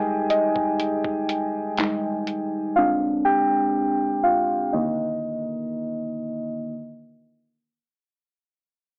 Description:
contemporary R&B; 61 BPM; 4/4; straight; A4 = 444 Hz
muted felt-like synth keys; accompaniment; 0.0-6.7 s; D3 to Ab5; -24 LUFS; equal; chorus, low-pass filter, cassette tape
dusty soul sampler-style drum kit; drums; 0.3-2.5 s; handclaps, hi-hat, kick drum; -31 LUFS; equal; cassette tape
light reverb; home recording on cassette, AM radio sound; -24 LUFS; mono
0.0-6.7 A section
synth keys solo 0.0-6.7; filter sweep on synth keys 0.0-6.7
0.0 Ebadd11/G; 2.8 Abmaj7#11; 4.7 Bbadd11/D

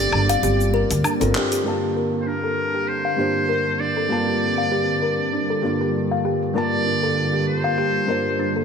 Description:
organic downtempo; 98 BPM; 4/4; swing 55% on 16ths; G minor; A4 = 443 Hz
trumpet with metal mute; melody; 0.0-8.6 s; Bb4 to D5; -25 LUFS; right 1 dB; ping-pong delay
felt-muted upright piano; accompaniment; 0.0-8.6 s; G2 to A5; -25 LUFS; equal; ping-pong delay
ethereal airy pad; sustained chords; 0.0-8.6 s; D3 to F4; -27 LUFS; right 1 dB; ensemble chorus, built-in reverb
kalimba; arpeggios; 0.0-8.6 s; D4 to F5; -24 LUFS; left 2 dB; low-pass filter, ping-pong delay
upright bass; bass; 0.0-1.3 s; G1 to D2; -22 LUFS; right 1 dB; tube saturation
deep house drum kit; drums; 0.1-8.6 s; cabasa, handclaps, hi-hat, woodblock; -26 LUFS; left 1 dB; overdrive, low-pass filter on hats, low-pass filter on perc, low-pass filter on snare, low-pass filter on room
moderate echo chamber reverb, RT60 2.3 s; -19 LUFS; side -6 dB against mid
0.0-1.7 A section; 1.7-8.6 B section
band accent 1.4-1.7; filter sweep on kalimba 1.7-8.6; filter sweep on ambient pad 1.7-8.6
0.0 Gm7

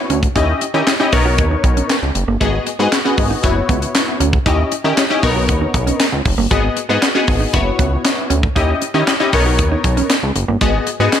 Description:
early-eighties boogie funk; 117 BPM; 4/4; straight; G# minor; A4 = 440 Hz
funky polysynth comp; accompaniment; 0.0-11.2 s; B3 to D#5; -18 LUFS; left 4 dB; chorus
mellow electric guitar; riff; 0.1-11.1 s; G#3 to F#4; -23 LUFS; right 7 dB; lush chorus
chorused synth bass; bass; 0.1-11.1 s; F#1 to D#3; -18 LUFS; equal
tight funk drum kit; drums; 0.1-11.2 s; handclaps, hi-hat, kick drum, snare drum; -17 LUFS; equal; gated reverb
light reverb; -13 LUFS; side -9 dB against mid
0.0-11.2 A section
0.4 D#7b9; 1.1 Bmaj9; 2.4 G#m7; 3.4 F#7sus4; 4.5 D#7b9; 5.2 Bmaj9; 6.5 G#m7; 7.5 F#7sus4; 8.6 D#7b9; 9.3 Bmaj9; 10.6 G#m7

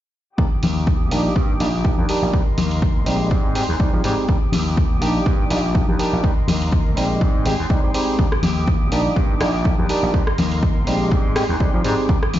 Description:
filtered disco house; 123 BPM; 4/4; swing 55% on 16ths; Eb major; A4 = 441 Hz
barky tine electric piano; accompaniment; 0.4-12.2 s; G3 to G4; -23 LUFS; right 1 dB; phaser, sidechain pumping, low-pass filter
clear studio string section; sustained chords; 0.4-12.4 s; G4 to Eb6; -30 LUFS; left 1 dB; sidechain pumping, low-pass filter
gritty slap bass; bass; 0.4-12.4 s; Ab1 to F3; -23 LUFS; equal; overdrive, sidechain pumping, low-pass filter
electronic kick drum; drums; 0.4-12.2 s; -19 LUFS; equal; overdrive
tambourine and congas; percussion; 0.4-12.4 s; -24 LUFS; left 5 dB; sidechain pumping on perc, low-pass filter on perc
punchy analog drum machine; drums; 0.6-12.4 s; hi-hat, rim click; -29 LUFS; right 1 dB; sidechain pumping on hats
little or no reverb; played on a big sound system in a bare room, stone room reverb, nothing above 7.5 kHz; -16 LUFS; side -13 dB against mid
0.4-12.4 A section
filter sweep 0.4-12.4
0.4 Ebmaj7; 2.3 Cm7/Eb; 3.3 Abmaj7; 4.3 Ebmaj7; 6.2 Cm7/Eb; 7.2 Abmaj7; 8.2 Ebmaj7; 10.1 Cm7/Eb; 11.1 Abmaj7

